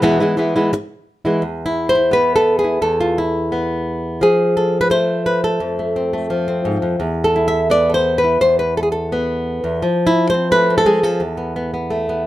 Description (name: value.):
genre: flamenco.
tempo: 172 BPM.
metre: 4/4.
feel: straight.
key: unclear.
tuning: A4 = 440 Hz.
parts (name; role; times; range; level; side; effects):
flamenco guitar; solo; 0.0-12.3 s; E2 to E5; -15 LUFS; equal; none.
room: light reverb.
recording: none.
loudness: -15 LUFS.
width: side -15 dB against mid.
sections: 0.0-1.4 A section; 1.4-12.3 B section.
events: none.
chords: 0.0 E; 1.4 Esus4; 4.2 F; 7.0 Esus4; 9.8 F; 11.2 Esus4.